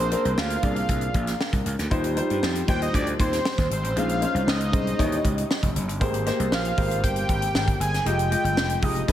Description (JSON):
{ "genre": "polished 1980s jazz-funk pop", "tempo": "117 BPM", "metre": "4/4", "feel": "straight", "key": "unclear", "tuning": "A4 = 439 Hz", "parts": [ { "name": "fat analog lead", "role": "melody", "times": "0.0-9.1 s", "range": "C5 to Ab5", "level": "-28 LUFS", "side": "equal", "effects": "phaser" }, { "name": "warm grand piano", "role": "accompaniment", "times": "0.0-9.1 s", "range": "Fb3 to Eb5", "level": "-28 LUFS", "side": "left 1 dB", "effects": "wide subtle chorus, slapback echo" }, { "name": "gritty slap bass", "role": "bass", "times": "0.0-9.1 s", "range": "F1 to G2", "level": "-26 LUFS", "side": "equal", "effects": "overdrive" }, { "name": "tight funk drum kit", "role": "drums", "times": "0.1-9.1 s", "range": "hi-hat, kick drum, snare drum", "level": "-26 LUFS", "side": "equal", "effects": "none" } ], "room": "moderate lush hall reverb, RT60 1.9 s, small room ambience", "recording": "big arena sound", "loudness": "-21 LUFS", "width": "side -11 dB against mid", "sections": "0.0-9.1 A section", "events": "none", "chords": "0.0 Bb9; 1.9 Eb69; 4.0 Bbm11; 5.0 Eb7b9; 6.0 Abmaj9; 8.1 Fm9" }